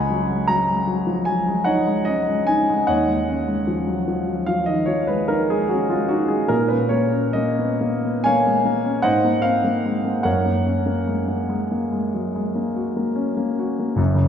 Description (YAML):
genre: classical, impressionist solo piano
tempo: 49 BPM (dotted quarters)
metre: 9/8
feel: uneven beats, rubato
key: F# major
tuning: A4 = 440 Hz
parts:
  - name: warm concert grand piano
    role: solo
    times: 0.0-14.3 s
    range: F#1 to B5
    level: -18 LUFS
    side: equal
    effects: none
room: wet church reverb, RT60 3.4 s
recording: recorded in a church or concert hall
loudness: -18 LUFS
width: side -8 dB against mid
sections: 0.0-14.0 A section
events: none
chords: 0.0 C#9sus4; 2.9 D#m11; 6.5 A#m7; 9.1 G#add9; 10.3 F#add9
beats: 0.50 1.66 | 2.88 4.08 5.30 | 6.51 7.80 9.06 | 10.26 11.49 12.76 | 13.99